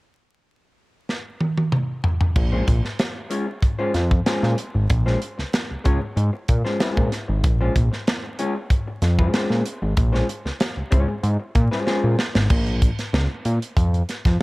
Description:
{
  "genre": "funk",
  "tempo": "95 BPM",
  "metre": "4/4",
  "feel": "straight",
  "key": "Bb minor",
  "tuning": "A4 = 439 Hz",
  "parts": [
    { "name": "tight funk drum kit", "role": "drums", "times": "1.1-14.4 s", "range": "crash cymbal, hi-hat, kick drum, snare drum, toms", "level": "-22 LUFS", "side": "equal", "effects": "none" },
    { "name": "vintage hollow-body jazz guitar", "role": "accompaniment", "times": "2.4-12.4 s", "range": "Ab3 to Db5", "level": "-26 LUFS", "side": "left 2 dB", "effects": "none" },
    { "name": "fat analog bass", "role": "bass", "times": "2.4-14.4 s", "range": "Ab1 to Bb2", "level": "-20 LUFS", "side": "equal", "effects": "none" }
  ],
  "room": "light reverb, small room ambience",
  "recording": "dark, warm production, vinyl crackle",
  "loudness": "-19 LUFS",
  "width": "side -22 dB against mid",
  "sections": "0.0-2.4 A section; 2.4-12.5 B section; 12.5-14.4 C section",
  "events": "drum fill 1.1-2.4, 11.9-12.5",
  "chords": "0.0 N.C.; 2.4 Bbm9; 12.5 Bbm",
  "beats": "0.46 1.09 1.73 | 2.36 3.00 3.63 4.27 | 4.90 5.53 6.17 6.80 | 7.43 8.07 8.70 9.34 | 9.97 10.60 11.24 11.87 | 12.50 13.14 13.77"
}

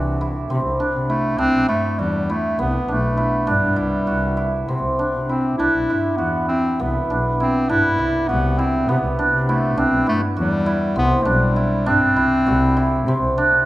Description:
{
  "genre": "contemporary instrumental, chamber music in an uneven meter",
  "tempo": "201 BPM (eighths)",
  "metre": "7/8",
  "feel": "straight",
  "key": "C lydian",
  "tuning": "A4 = 440 Hz",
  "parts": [
    { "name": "warm clarinet", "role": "melody", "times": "0.0-13.4 s", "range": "E3 to E4", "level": "-21 LUFS", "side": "left 1 dB", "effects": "none" },
    { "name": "cimbalom", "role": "arpeggios", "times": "0.0-13.7 s", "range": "B3 to F#4", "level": "-20 LUFS", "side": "right 2 dB", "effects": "none" },
    { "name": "dark double bass", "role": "bass", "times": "0.0-13.7 s", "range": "B1 to C3", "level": "-23 LUFS", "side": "equal", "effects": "none" }
  ],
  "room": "moderate recital hall reverb, RT60 1.5 s",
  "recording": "none",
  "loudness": "-17 LUFS",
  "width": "side -16 dB against mid",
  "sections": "0.0-13.7 A section",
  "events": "none",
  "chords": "0.0 Cmaj7",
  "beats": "0.20 0.50 0.80 1.09 | 1.39 1.68 1.98 2.28 2.58 2.88 3.18 | 3.47 3.77 4.07 4.38 4.68 4.98 5.29 | 5.59 5.89 6.19 6.50 6.80 7.10 7.40 | 7.70 7.99 8.29 8.59 8.88 9.18 9.48 | 9.77 10.07 10.37 10.66 10.96 11.26 11.56 | 11.86 12.16 12.46 12.76 13.07 13.37"
}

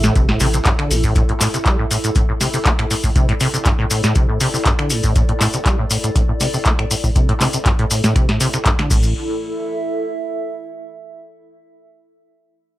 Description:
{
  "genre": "acid house",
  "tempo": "120 BPM",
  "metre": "4/4",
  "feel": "straight",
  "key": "A minor pentatonic",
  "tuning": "A4 = 440 Hz",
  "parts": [
    { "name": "acid bass, saw", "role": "riff", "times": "0.0-9.1 s", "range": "G2 to A3", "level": "-20 LUFS", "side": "equal", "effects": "tube saturation, lush chorus, tape echo" },
    { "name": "saturated sub bass", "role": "bass", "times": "0.0-1.1, 8.9-9.1 s", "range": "G1 to A1", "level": "-20 LUFS", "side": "equal", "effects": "sidechain pumping" },
    { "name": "booming analog drum machine", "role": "drums", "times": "0.0-9.0 s", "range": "crash cymbal, finger snaps, handclaps, hi-hat, snare drum", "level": "-21 LUFS", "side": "equal", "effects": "none" },
    { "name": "maracas", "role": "percussion", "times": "0.0-9.1 s", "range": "none", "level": "-24 LUFS", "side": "left 2 dB", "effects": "none" },
    { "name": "warbly tape-like pad", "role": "texture", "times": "0.0-11.1 s", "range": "E4 to E5", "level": "-26 LUFS", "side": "equal", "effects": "chorus, built-in reverb, tremolo, sidechain pumping" },
    { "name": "electronic kick drum", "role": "drums", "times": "0.2-9.0 s", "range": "none", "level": "-17 LUFS", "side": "equal", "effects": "none" }
  ],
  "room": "light reverb",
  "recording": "none",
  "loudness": "-15 LUFS",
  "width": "side -16 dB against mid",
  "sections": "0.0-9.2 A section; 9.2-11.2 B section",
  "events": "none",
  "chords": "0.0 A5",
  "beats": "0.16 0.66 | 1.16 1.66 2.16 2.66 | 3.16 3.66 4.16 4.66 | 5.16 5.66 6.16 6.66 | 7.16 7.66 8.16 8.66 | 9.16 9.66 10.16 10.66"
}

